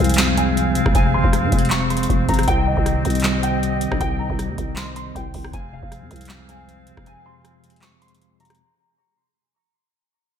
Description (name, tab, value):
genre	hip hop, trap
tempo	157 BPM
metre	4/4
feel	half-time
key	unclear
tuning	A4 = 435 Hz
part	dark concert grand piano	melody	0.0-8.6 s	Eb5 to Db6	-27 LUFS	left 1 dB	analog chorus, low-pass filter, ping-pong delay
part	mellow tine electric piano	accompaniment	0.0-8.6 s	F2 to C5	-23 LUFS	left 1 dB	medium stereo tremolo, low-pass filter
part	flute section	sustained chords	0.0-8.6 s	C4 to F5	-27 LUFS	equal	none
part	growling 808-style bass	bass	0.0-7.1 s	F1 to Ab2	-23 LUFS	equal	none
part	booming analog drum machine	drums	0.0-8.6 s	handclaps, hi-hat, kick drum, rim click, snare drum	-22 LUFS	equal	none
room	light reverb, digital ambience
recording	none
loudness	-17 LUFS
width	side -8 dB against mid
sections	0.0-8.6 A section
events	fade-out 0.0-8.6; break 7.1-8.6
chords	0.0 Fm; 2.5 Cm; 5.5 Fm